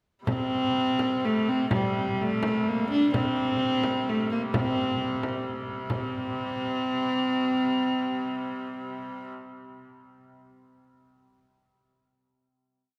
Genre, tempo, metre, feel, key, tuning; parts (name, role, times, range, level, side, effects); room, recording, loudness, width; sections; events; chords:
medieval dance; 124-143 BPM; 3/4; straight; A4 = 436 Hz
warm hurdy-gurdy; drone; 0.2-9.3 s; C3 to G3; -38 LUFS; equal
warm viola da gamba; melody; 0.3-9.3 s; G3 to D4; -28 LUFS; equal
frame drum; percussion; 0.3-6.1 s; -35 LUFS; equal
wet cathedral reverb, RT60 4.8 s; recorded in a church or concert hall; -27 LUFS; mono
0.3-5.9 A section; 5.9-8.5 final chord
speeding up 0.3-8.5